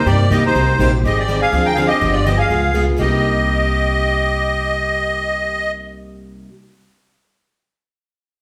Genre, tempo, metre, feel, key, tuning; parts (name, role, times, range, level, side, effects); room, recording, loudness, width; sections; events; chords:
acoustic string swing (jazz manouche); 246 BPM; 4/4; swing 56% on 8ths; C minor; A4 = 440 Hz
musette accordion; melody; 0.0-5.7 s; C5 to G5; -21 LUFS; equal
breathy soprano saxophone; second line; 0.0-5.7 s; Eb4 to Bb4; -27 LUFS; equal
upright bass; bass; 0.0-6.4 s; G1 to G2; -22 LUFS; equal
picked plugged-in steel-string acoustic guitar; accompaniment; 0.1-6.5 s; C3 to Ab4; -25 LUFS; equal
picked steel-string acoustic guitar; accompaniment; 0.1-6.5 s; C3 to Ab4; -27 LUFS; equal
wet large studio reverb, RT60 1.1 s; band playing live in one room; -17 LUFS; mono
0.0-1.0 A section; 1.0-3.0 B section; 3.0-5.0 C section
0.0 Cm7; 1.0 Abmaj7; 1.5 Dm7b5; 2.0 G7; 2.5 Db7; 3.0 Cm7